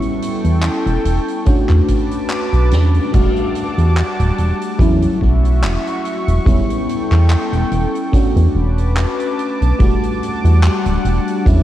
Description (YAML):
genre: vaporwave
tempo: 72 BPM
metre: 4/4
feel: swing 55% on 16ths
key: E dorian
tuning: A4 = 440 Hz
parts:
  - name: FM electric piano with soft pad layer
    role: accompaniment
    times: 0.0-11.6 s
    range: F#3 to F#4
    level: -20 LUFS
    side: equal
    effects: lush chorus, diffuse ambient delay
  - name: lush unison pad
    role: sustained chords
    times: 0.0-11.6 s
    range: G3 to D6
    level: -24 LUFS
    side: left 1 dB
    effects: chorus
  - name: soft-mallet drum kit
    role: drums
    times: 0.0-11.6 s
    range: crash cymbal, handclaps, hi-hat, snare drum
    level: -28 LUFS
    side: equal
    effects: small room ambience
  - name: chorused synth bass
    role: bass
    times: 0.4-11.6 s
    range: D1 to E2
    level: -13 LUFS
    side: equal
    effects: none
  - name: kick drum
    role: drums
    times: 1.5-11.6 s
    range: none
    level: -16 LUFS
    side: equal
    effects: small room ambience
room: moderate plate reverb, RT60 2.5 s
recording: dreamy mix soaked in reverb, cassette tape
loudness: -13 LUFS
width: side -13 dB against mid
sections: 0.0-3.1 A section; 3.1-11.6 B section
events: drum fill 2.7-3.1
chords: 0.0 A7; 1.5 Bm7/E; 3.1 Em11; 4.8 A69; 6.5 A7/E; 8.1 Bm7/E; 9.8 Em11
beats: 0.63 1.47 2.30 | 3.13 3.97 4.80 5.63 | 6.47 7.30 8.13 8.97 | 9.80 10.63 11.47